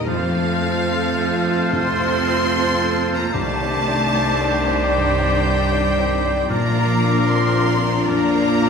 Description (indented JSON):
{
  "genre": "cinematic, emotional film score for orchestra",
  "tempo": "75 BPM",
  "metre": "4/4",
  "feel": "rubato",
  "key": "Bb major",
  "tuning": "A4 = 438 Hz",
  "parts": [
    { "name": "clear studio violin section", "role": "melody", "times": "0.0-8.7 s", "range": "F5 to C6", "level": "-25 LUFS", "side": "left 3 dB", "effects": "none" },
    { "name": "clear studio violin section", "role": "second line", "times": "0.0-8.7 s", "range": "G4 to D5", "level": "-28 LUFS", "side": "left 2 dB", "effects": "none" },
    { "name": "dark baby grand piano", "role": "accompaniment", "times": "0.0-8.7 s", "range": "Bb1 to D5", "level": "-26 LUFS", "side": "left 2 dB", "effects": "none" },
    { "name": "rich studio viola section", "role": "accompaniment", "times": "0.0-8.7 s", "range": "Eb3 to F4", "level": "-27 LUFS", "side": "right 2 dB", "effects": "none" },
    { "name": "mellow French horn section", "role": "sustained chords", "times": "0.0-8.7 s", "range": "F3 to D5", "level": "-25 LUFS", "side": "left 2 dB", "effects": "none" },
    { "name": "concert harp", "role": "arpeggios", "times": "0.0-8.7 s", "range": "Bb2 to D6", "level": "-28 LUFS", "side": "left 4 dB", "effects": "none" },
    { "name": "rich studio cello section", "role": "bass", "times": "0.0-8.7 s", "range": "F3 to C4", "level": "-26 LUFS", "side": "right 3 dB", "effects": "none" },
    { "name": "rich studio double bass section", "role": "bass", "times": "0.0-8.7 s", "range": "Bb1 to F2", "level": "-25 LUFS", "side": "right 2 dB", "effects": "none" },
    { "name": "bright clarinet", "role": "second line", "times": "0.1-8.7 s", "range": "F4 to A4", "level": "-29 LUFS", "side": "left 1 dB", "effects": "none" },
    { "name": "clear oboe", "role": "second line", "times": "0.1-8.7 s", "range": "Bb4 to C5", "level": "-27 LUFS", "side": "right 3 dB", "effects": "none" },
    { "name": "concert flute", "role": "second line", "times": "0.1-8.7 s", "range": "D6 to F6", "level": "-28 LUFS", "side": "left 2 dB", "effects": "none" }
  ],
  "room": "wet recital hall reverb, RT60 1.3 s",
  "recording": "recorded in a church or concert hall",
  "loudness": "-16 LUFS",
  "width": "side -6 dB against mid",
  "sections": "0.0-8.7 A section",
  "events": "none",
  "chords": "0.1 F; 3.3 Cmadd9; 6.5 Bb"
}